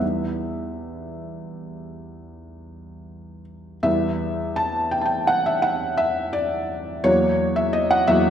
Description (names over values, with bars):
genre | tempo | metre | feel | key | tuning
classical, romantic nocturne for solo piano | 44-59 BPM (dotted quarters) | 9/8 | rubato | E minor | A4 = 439 Hz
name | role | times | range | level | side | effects
felt-muted upright piano | solo | 0.0-8.3 s | E2 to A5 | -21 LUFS | equal | none
room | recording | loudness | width
wet concert hall reverb, RT60 2.0 s | minimal, uncompressed stereo recording | -20 LUFS | side -9 dB against mid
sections
0.0-3.9 A section; 3.9-8.3 A section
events
none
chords
0.0 Em; 7.1 F#7/E